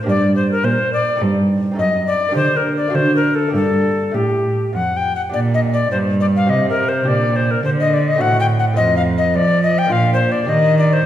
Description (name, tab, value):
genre	classical, baroque-style sonata movement with continuo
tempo	105 BPM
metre	3/4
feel	straight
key	G minor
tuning	A4 = 441 Hz
part	lute	accompaniment	0.0-11.1 s	F2 to A4	-24 LUFS	right 1 dB	none
part	dark cello	bass	0.0-11.0 s	F2 to F3	-18 LUFS	right 2 dB	none
part	alto recorder	melody	0.1-11.1 s	G4 to G5	-17 LUFS	left 3 dB	none
room	wet recital hall reverb, RT60 1.7 s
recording	heard from further back in the room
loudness	-14 LUFS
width	side -11 dB against mid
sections	0.0-5.3 A section; 5.3-11.1 A section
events	none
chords	0.1 Gm; 1.2 Am7b5/G; 1.8 F#dim7; 2.4 Gm/D; 2.9 D; 3.5 Gm; 5.3 Gm/Bb; 6.5 C5; 7.1 Gm/Bb; 8.2 F#dim/A; 8.8 F; 9.9 Bb; 10.5 Ebmaj7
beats	| 0.08 0.65 1.21 | 1.78 2.36 2.94 | 3.54 4.14 4.74 | 5.33 5.91 6.50 | 7.07 7.64 8.21 | 8.79 9.36 9.92 | 10.49 11.05